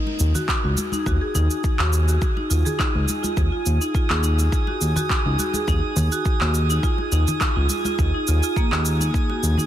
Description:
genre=organic downtempo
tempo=104 BPM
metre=4/4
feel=swing 53% on 16ths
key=unclear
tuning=A4 = 440 Hz
part: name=drifting glass-harmonics texture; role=texture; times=0.4-9.7 s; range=Ab4 to Ab5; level=-30 LUFS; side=right 3 dB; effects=chorus, built-in reverb, shimmer reverb
part: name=congas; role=percussion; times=0.1-9.7 s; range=none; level=-30 LUFS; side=left 1 dB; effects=none
part: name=smooth gliding synth bass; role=bass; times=0.2-9.6 s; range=Db2 to Eb2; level=-20 LUFS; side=equal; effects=sidechain pumping
part: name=electronic shaker and handclaps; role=drums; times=0.2-9.7 s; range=none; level=-27 LUFS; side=right 1 dB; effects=none
part: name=marimba with medium hard mallets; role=arpeggios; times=0.3-9.7 s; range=Bb3 to Ab4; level=-26 LUFS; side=equal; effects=digital delay, shimmer reverb
part: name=electronic kick drum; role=drums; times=0.5-9.3 s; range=none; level=-23 LUFS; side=equal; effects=none
room=light reverb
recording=dense, heavily limited modern master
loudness=-19 LUFS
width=side -11 dB against mid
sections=0.0-9.7 A section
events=none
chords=0.0 Ebm; 2.2 Db (rootless); 4.5 Dbsus4 (rootless); 6.8 Bb7(no3) (rootless); 9.1 Ebm

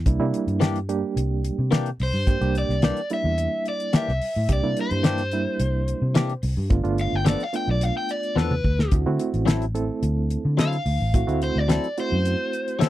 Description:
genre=straight-eighth soul blues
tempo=108 BPM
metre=4/4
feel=straight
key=unclear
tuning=A4 = 438 Hz
part: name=vintage muted fingered electric bass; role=bass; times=0.0-12.3 s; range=G1 to D3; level=-24 LUFS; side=equal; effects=none
part: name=reed electric piano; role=accompaniment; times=0.1-12.9 s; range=G3 to E5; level=-27 LUFS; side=right 5 dB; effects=fast tremolo
part: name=damped 70s drum kit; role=drums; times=0.1-12.9 s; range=hi-hat, kick drum, snare drum, toms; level=-22 LUFS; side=equal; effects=none
part: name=direct-recorded clean electric guitar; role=stabs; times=0.6-12.9 s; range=E3 to A4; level=-26 LUFS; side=left 6 dB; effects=wide subtle chorus
part: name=overdriven semi-hollow guitar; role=melody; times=2.0-12.9 s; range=B4 to G5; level=-27 LUFS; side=left 1 dB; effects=none
room=little or no reverb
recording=dry, close 1970s-style studio recording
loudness=-21 LUFS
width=side -14 dB against mid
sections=0.0-12.9 A section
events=overdriven electric guitar solo 0.0-12.9; drum fill 8.4-8.9; reed electric piano fill 12.5-12.9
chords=0.1 C9; 6.7 G9; 8.9 D9

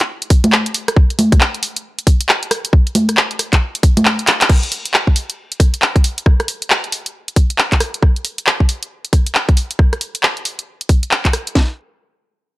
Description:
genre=UK garage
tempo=136 BPM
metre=4/4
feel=swing 62% on 16ths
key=none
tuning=none
part: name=garage drum kit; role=drums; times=0.0-11.5 s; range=congas, crash cymbal, handclaps, hi-hat, rim click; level=-15 LUFS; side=equal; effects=none
part: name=garage drum kit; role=drums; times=0.3-11.7 s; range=kick drum, snare drum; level=-11 LUFS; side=equal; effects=none
room=little or no reverb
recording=dry, gritty hardware recording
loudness=-13 LUFS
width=side -18 dB against mid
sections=0.0-4.5 A section; 4.5-11.6 B section; 11.6-12.6 C section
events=drop 0.0-4.5; kick drops out 4.1-4.5; drum fill 4.3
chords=none

